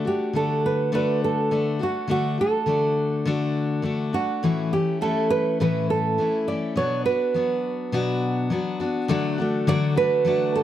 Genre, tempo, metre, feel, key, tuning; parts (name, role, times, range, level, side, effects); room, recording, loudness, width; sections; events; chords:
acoustic pop; 103 BPM; 4/4; straight; D major; A4 = 440 Hz
nylon-string guitar; melody; 0.0-10.6 s; F#4 to D5; -23 LUFS; right 4 dB; plate reverb
picked steel-string acoustic guitar; accompaniment; 0.0-10.6 s; A2 to F#4; -24 LUFS; left 3 dB
mellow tonewheel organ; sustained chords; 9.1-10.6 s; D3 to A4; -29 LUFS; right 1 dB; slow rotary speaker
light reverb; dark, warm production; -21 LUFS; side -11 dB against mid
0.0-9.1 A section; 9.1-10.6 B section
0.0 D; 4.4 A; 6.8 Bm; 9.1 D